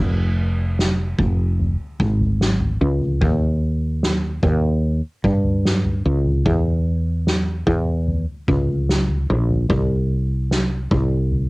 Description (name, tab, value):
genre	pop ballad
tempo	74 BPM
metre	4/4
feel	straight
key	unclear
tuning	A4 = 440 Hz
part	woody fretless electric bass	bass	0.0-11.5 s	F1 to G2	-18 LUFS	equal	wide subtle chorus
part	soft-mallet drum kit	drums	0.8-11.5 s	kick drum, snare drum, toms	-23 LUFS	equal	cassette tape
room	little or no reverb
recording	home recording on cassette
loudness	-17 LUFS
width	side -24 dB against mid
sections	0.0-11.5 A section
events	none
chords	none